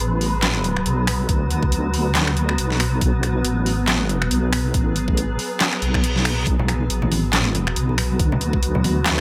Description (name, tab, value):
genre	deep dubstep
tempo	139 BPM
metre	4/4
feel	swing 56% on 16ths, half-time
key	B dorian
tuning	A4 = 441 Hz
part	granular cloud pad	sustained chords	0.0-9.2 s	F#3 to G#4	-28 LUFS	equal	built-in reverb
part	deep soft wobble bass	bass	0.0-9.2 s	A1 to D2	-24 LUFS	equal	chorus
part	wind-like tuned noise texture	texture	0.0-9.2 s	B4	-33 LUFS	equal	built-in reverb
part	dubstep drum kit	drums	0.2-9.2 s	finger snaps, handclaps, hi-hat, snare drum	-25 LUFS	equal	overdrive, small room ambience
part	electronic kick drum	drums	1.3-8.6 s	none	-23 LUFS	equal	overdrive, small room ambience
part	reverse cymbal	sound effects	5.8-6.5 s	none	-31 LUFS	equal	none
part	congas	percussion	6.6-8.9 s	none	-30 LUFS	equal	none
room	light reverb, digital ambience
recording	none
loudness	-20 LUFS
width	mono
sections	0.0-9.2 A section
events	reverse cymbal 5.8-6.5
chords	0.0 B5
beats	0.43 0.86 | 1.29 1.72 2.15 2.58 | 3.02 3.45 3.88 4.31 | 4.74 5.17 5.61 6.04 | 6.47 6.90 7.33 7.76 | 8.20 8.63 9.06